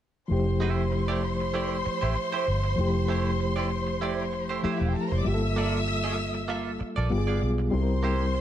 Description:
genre	lush 1970s-style soul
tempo	97 BPM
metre	4/4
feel	swing 54% on 16ths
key	F major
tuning	A4 = 441 Hz
part	warm studio string section	second line	0.3-8.4 s	E4 to E6	-32 LUFS	equal	none
part	reed electric piano	accompaniment	0.3-8.4 s	F3 to Bb4	-29 LUFS	left 2 dB	overdrive, fast tremolo
part	vintage muted fingered electric bass	bass	0.3-8.4 s	E1 to C2	-28 LUFS	equal	none
part	direct-recorded clean electric guitar	riff	0.6-8.4 s	A3 to E5	-34 LUFS	right 6 dB	lush chorus
room	moderate plate reverb, RT60 2.6 s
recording	dark, warm production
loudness	-24 LUFS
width	side -11 dB against mid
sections	0.3-8.4 A section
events	none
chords	0.3 Fmaj9; 5.3 Gm9; 7.1 G7b9; 7.7 C7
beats	| 0.30 0.92 1.54 2.16 | 2.78 3.40 4.01 4.63 | 5.25 5.87 6.49 7.11 | 7.72 8.34

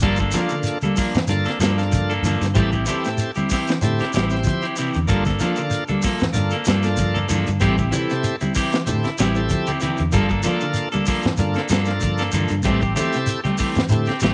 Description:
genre	afrobeat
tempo	95 BPM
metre	4/4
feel	swing 54% on 16ths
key	G dorian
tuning	A4 = 440 Hz
part	bright tonewheel organ	accompaniment	0.0-14.1 s	Bb3 to C5	-29 LUFS	equal	slow rotary speaker, overdrive
part	electric guitar at the edge of break-up	arpeggios	0.0-14.3 s	A2 to G3	-28 LUFS	equal	none
part	electric guitar at the edge of break-up	stabs	0.0-14.3 s	E3 to A4	-27 LUFS	equal	none
part	vintage muted fingered electric bass	bass	0.0-14.3 s	G1 to A2	-25 LUFS	equal	none
part	tight funk drum kit	drums	0.0-14.3 s	hi-hat, kick drum, snare drum	-27 LUFS	equal	none
part	congas	percussion	0.0-14.3 s	none	-29 LUFS	equal	none
part	shekere	percussion	0.2-14.3 s	none	-31 LUFS	equal	none
room	light reverb, studio reverb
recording	nothing above 10.5 kHz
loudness	-21 LUFS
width	mono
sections	0.0-14.3 A section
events	none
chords	0.0 Gm9; 2.6 Am7; 5.1 Gm9; 7.6 Am7; 10.1 Gm9; 12.7 Am7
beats	| 0.03 0.66 1.29 1.93 | 2.56 3.19 3.83 4.46 | 5.09 5.72 6.35 6.99 | 7.62 8.25 8.88 9.51 | 10.14 10.77 11.40 12.03 | 12.66 13.29 13.92

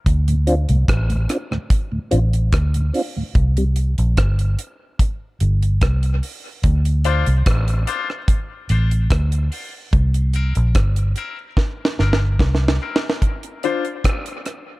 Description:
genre	dub reggae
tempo	73 BPM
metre	4/4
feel	straight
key	D minor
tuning	A4 = 441 Hz
part	vintage muted fingered electric bass	bass	0.1-12.8 s	G1 to D2	-17 LUFS	equal	none
part	deep reggae drum kit	drums	0.1-14.7 s	hi-hat, kick drum, rim click, snare drum	-20 LUFS	equal	none
part	mellow tonewheel organ	accompaniment	0.3-3.6 s	D2 to F4	-23 LUFS	equal	chorus vibrato, slow rotary speaker, high-pass filter
part	clear concert grand piano	stabs	7.1-13.8 s	C4 to C5	-26 LUFS	left 7 dB	high-pass filter, dub echo
room	small room reverb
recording	none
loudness	-17 LUFS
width	side -20 dB against mid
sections	0.0-13.2 A section; 13.2-14.8 B section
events	break 0.1-6.6, 13.2-14.8; filter sweep 3.4-13.2; drum fill 11.6-13.2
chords	0.1 Dm7; 3.4 C5; 6.6 Dm7; 9.9 C7; 13.2 Dm7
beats	| 0.06 0.88 1.71 2.53 | 3.35 4.17 5.00 5.82 | 6.64 7.46 8.29 9.11 | 9.93 10.76 11.58 12.40 | 13.22 14.05

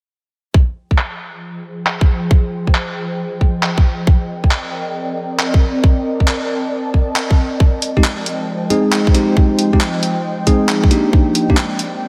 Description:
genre	UK garage, two-step garage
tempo	136 BPM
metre	4/4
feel	swing 66% on 16ths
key	F minor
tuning	A4 = 438 Hz
part	ethereal airy pad	sustained chords	1.4-12.1 s	F3 to A5	-24 LUFS	equal	ensemble chorus, built-in reverb, sidechain pumping
part	electronic kick drum	drums	0.5-11.6 s	none	-14 LUFS	equal	small room ambience
part	breakbeat sampler-style drum kit	drums	1.0-11.9 s	handclaps, hi-hat	-24 LUFS	equal	low-pass filter on snare, small room ambience, low-pass filter on hats
part	bell-like tine electric piano	stabs	8.0-11.6 s	Ab3 to Ab4	-18 LUFS	equal	diffuse ambient delay
room	moderate lush hall reverb, RT60 2.0 s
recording	dreamy mix soaked in reverb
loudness	-16 LUFS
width	mono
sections	0.5-12.1 A section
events	filter sweep on drum 0.5-12.1; filter sweep on ambient pad 0.5-12.1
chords	0.5 Fm9; 4.1 Cm9; 7.6 Fm9; 11.1 Cm9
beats	| 0.54 0.98 1.43 1.87 | 2.31 2.75 3.19 3.63 | 4.07 4.51 4.95 5.39 | 5.84 6.28 6.72 7.16 | 7.60 8.04 8.48 8.93 | 9.37 9.81 10.25 10.69 | 11.13 11.57 12.01

